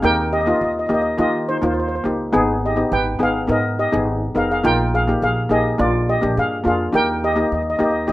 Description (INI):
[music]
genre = calypso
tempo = 104 BPM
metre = 4/4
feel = straight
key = Eb major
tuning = A4 = 443 Hz
[part]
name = steel pan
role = melody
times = 0.0-8.1 s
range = Eb4 to G5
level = -20 LUFS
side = equal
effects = none
[part]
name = steel pan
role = accompaniment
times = 0.0-8.1 s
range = Bb3 to Bb4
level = -20 LUFS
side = left 1 dB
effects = none
[part]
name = upright bass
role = bass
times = 0.0-8.1 s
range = F1 to Eb3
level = -24 LUFS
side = right 1 dB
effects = none
[sound]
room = light reverb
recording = rough home demo mix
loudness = -16 LUFS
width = side -16 dB against mid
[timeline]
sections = 0.0-8.1 A section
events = none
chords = 0.0 Eb; 2.3 Abm; 4.6 Bb7sus4; 5.8 Bb7; 6.9 Eb